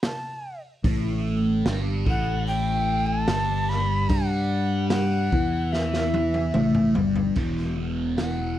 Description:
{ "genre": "psychedelic rock", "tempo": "74 BPM", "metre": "4/4", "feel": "straight", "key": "unclear", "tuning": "A4 = 440 Hz", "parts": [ { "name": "raw garage drum kit", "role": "drums", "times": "0.0-8.4 s", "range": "crash cymbal, hi-hat, kick drum, snare drum, toms", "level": "-28 LUFS", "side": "equal", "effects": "none" }, { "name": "breathy jazz flute", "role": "melody", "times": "0.1-8.6 s", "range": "E5 to B5", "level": "-28 LUFS", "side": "right 1 dB", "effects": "slapback echo" }, { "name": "thick fuzz guitar", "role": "riff", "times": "0.8-8.6 s", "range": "E2 to G4", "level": "-26 LUFS", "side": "left 1 dB", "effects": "distortion, phaser" }, { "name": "fingered electric bass", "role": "bass", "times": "0.8-8.6 s", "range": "E1 to G2", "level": "-26 LUFS", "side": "equal", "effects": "none" } ], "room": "little or no reverb", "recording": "none", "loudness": "-21 LUFS", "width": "side -12 dB against mid", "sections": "0.0-7.4 A section; 7.4-8.6 B section", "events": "drum fill 5.7-7.4", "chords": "0.0 A5; 7.4 E5" }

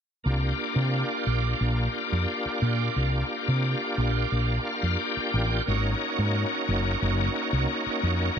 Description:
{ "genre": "electric jazz fusion", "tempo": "89 BPM", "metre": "4/4", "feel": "straight", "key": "unclear", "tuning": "A4 = 441 Hz", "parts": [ { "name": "bright tonewheel organ", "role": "accompaniment", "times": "0.2-8.4 s", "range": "Bb3 to G5", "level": "-27 LUFS", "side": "equal", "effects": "slow rotary speaker, chorus vibrato" }, { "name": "woody fretless electric bass", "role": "bass", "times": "0.3-8.4 s", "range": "Gb1 to C3", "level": "-25 LUFS", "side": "equal", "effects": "ensemble chorus" } ], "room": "light reverb, digital ambience", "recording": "bright 1980s-style digital production", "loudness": "-24 LUFS", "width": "side -8 dB against mid", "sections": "0.3-8.4 A section", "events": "tonewheel organ fill 4.3-5.7", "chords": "0.3 C9sus4; 5.7 Ab9sus4" }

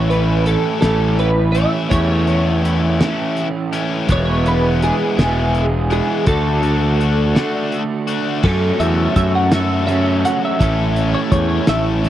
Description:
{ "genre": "indie rock", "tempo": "55 BPM (dotted quarters)", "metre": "6/8", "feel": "straight", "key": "A major", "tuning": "A4 = 440 Hz", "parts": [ { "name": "twelve-string electric guitar", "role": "melody", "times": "0.0-12.1 s", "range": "G#4 to F#5", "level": "-21 LUFS", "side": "equal", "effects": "analog chorus" }, { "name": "biting overdriven guitar", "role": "riff", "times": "0.0-12.1 s", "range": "D3 to A4", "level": "-23 LUFS", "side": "left 7 dB", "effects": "none" }, { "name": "crunchy overdriven guitar", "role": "riff", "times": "0.0-12.1 s", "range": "A2 to F#4", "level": "-22 LUFS", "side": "right 6 dB", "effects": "analog chorus, tape echo" }, { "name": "fuzz fingered electric bass", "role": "bass", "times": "0.0-12.1 s", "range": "E1 to F#2", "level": "-17 LUFS", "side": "equal", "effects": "overdrive" }, { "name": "cloth-damped thuddy drum kit", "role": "drums", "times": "0.1-12.1 s", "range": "crash cymbal, hi-hat, kick drum, snare drum", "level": "-18 LUFS", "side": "equal", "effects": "none" } ], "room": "little or no reverb", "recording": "dry, close 1970s-style studio recording", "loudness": "-14 LUFS", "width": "side -12 dB against mid", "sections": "0.0-8.4 A section; 8.4-12.1 B section", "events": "none", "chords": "0.0 A; 4.1 E; 6.3 D; 8.4 F#m7; 10.6 A" }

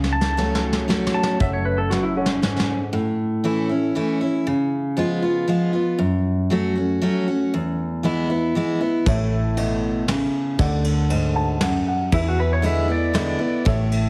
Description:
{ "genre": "honky-tonk and classic country", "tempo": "117 BPM", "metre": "3/4", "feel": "straight", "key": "A major", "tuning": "A4 = 440 Hz", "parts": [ { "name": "dark upright piano", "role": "accompaniment", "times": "0.0-2.9, 9.1-14.1 s", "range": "G#4 to A5", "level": "-32 LUFS", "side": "equal", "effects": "none" }, { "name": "picked steel-string acoustic guitar", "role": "accompaniment", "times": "0.0-14.1 s", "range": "E2 to F#4", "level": "-24 LUFS", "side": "equal", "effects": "none" }, { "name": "vintage muted fingered electric bass", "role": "bass", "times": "0.0-2.6, 9.1-14.1 s", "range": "F#1 to E2", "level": "-26 LUFS", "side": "equal", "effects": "none" }, { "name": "soft brush drum kit", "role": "drums", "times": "0.0-2.7, 9.1-14.0 s", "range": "hi-hat, kick drum, ride cymbal, snare drum", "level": "-28 LUFS", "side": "equal", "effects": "none" }, { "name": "pedal steel guitar", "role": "second line", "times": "0.1-2.8, 12.1-13.7 s", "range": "C#4 to A5", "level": "-28 LUFS", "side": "equal", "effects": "none" } ], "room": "moderate recital hall reverb, RT60 1.4 s", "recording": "heavily compressed radio sound, multiband compression", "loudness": "-21 LUFS", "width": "mono", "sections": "0.0-1.4 A section; 1.4-2.9 B section; 2.9-14.1 C section", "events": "drum fill 0.0-1.4, 1.9-2.9; pedal steel guitar solo 0.0-1.4; upright piano fill 11.1-12.1", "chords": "0.0 F#m; 2.9 A; 4.5 C#7; 6.0 F#m; 7.5 E; 9.1 A; 10.6 D; 12.1 E7" }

